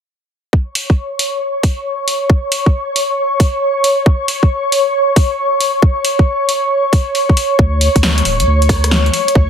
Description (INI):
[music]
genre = UK garage, two-step garage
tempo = 136 BPM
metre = 4/4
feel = swing 67% on 16ths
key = unclear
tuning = A4 = 441 Hz
[part]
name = ethereal airy pad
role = sustained chords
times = 0.9-9.5 s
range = C#5 to C#6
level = -16 LUFS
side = equal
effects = ensemble chorus, built-in reverb, sidechain pumping
[part]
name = electronic kick drum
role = drums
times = 0.5-9.5 s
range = none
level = -11 LUFS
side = equal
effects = none
[part]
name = punchy analog drum machine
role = drums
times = 0.8-9.3 s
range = hi-hat, rim click, snare drum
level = -18 LUFS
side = equal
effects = none
[part]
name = saturated sub bass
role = bass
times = 7.6-9.5 s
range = D1 to D2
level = -14 LUFS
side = equal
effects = none
[sound]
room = wet studio reverb, RT60 0.6 s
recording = heavily compressed radio sound, multiband compression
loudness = -12 LUFS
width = side -8 dB against mid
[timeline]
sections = 0.5-9.5 A section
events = filter sweep on ambient pad 0.5-9.5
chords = none